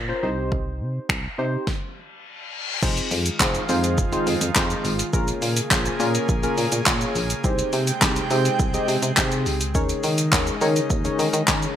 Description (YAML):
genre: dance-pop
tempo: 104 BPM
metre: 4/4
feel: straight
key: F minor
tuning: A4 = 439 Hz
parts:
  - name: solid FM bass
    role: bass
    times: 0.0-11.7 s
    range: F1 to Eb3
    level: -25 LUFS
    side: equal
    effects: sidechain pumping
  - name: deep mellow chord stab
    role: accompaniment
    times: 0.1-11.8 s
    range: Bb3 to Eb5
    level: -26 LUFS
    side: left 1 dB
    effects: chorus, sidechain pumping
  - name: deep house drum kit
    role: drums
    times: 0.5-11.8 s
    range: crash cymbal, finger snaps, handclaps, hi-hat, kick drum, shaker, snare drum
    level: -22 LUFS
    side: equal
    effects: gated reverb
  - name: reverse cymbal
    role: sound effects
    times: 2.1-2.8 s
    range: none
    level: -31 LUFS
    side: left 6 dB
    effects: none
  - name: airy breathy pad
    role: sustained chords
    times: 3.2-11.8 s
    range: C3 to G5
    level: -28 LUFS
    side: right 1 dB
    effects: chorus, sidechain pumping
  - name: group handclap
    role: percussion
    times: 3.4-11.6 s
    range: none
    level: barely audible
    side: none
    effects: none
room: light reverb, digital ambience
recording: bright 1980s-style digital production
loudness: -19 LUFS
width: side -10 dB against mid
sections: 0.0-2.8 A section; 2.8-11.8 B section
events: stop 1.7-2.8; reverse cymbal 2.1-2.8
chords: 0.2 Cm; 2.8 Fm7; 5.1 Bbm7; 7.4 Abmaj7/C; 9.8 Eb7sus4